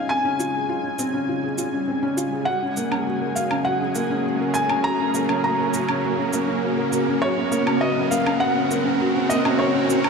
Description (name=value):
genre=piano and strings electronica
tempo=101 BPM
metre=4/4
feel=straight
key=unclear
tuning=A4 = 440 Hz
part: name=felt-muted upright piano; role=melody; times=0.0-10.1 s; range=Db5 to Bb5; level=-25 LUFS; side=equal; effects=tape echo
part: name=lush unison pad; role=sustained chords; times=0.0-10.1 s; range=Db3 to Ab5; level=-27 LUFS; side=right 1 dB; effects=chorus
part: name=felt-muted upright piano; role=riff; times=0.0-10.1 s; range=Bb3 to Bb4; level=-24 LUFS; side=left 1 dB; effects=tape echo
part: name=riser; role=sound effects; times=0.0-10.1 s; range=none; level=-28 LUFS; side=right 2 dB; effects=none
part: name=shaker and woodblock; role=drums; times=0.4-10.1 s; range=none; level=-29 LUFS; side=right 1 dB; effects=overdrive
room=wet concert hall reverb, RT60 2.3 s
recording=none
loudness=-20 LUFS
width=side -5 dB against mid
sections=0.0-10.1 A section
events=build-up 0.0-10.1; riser 0.0-10.1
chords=0.0 Dbmaj7; 2.5 Gb/Db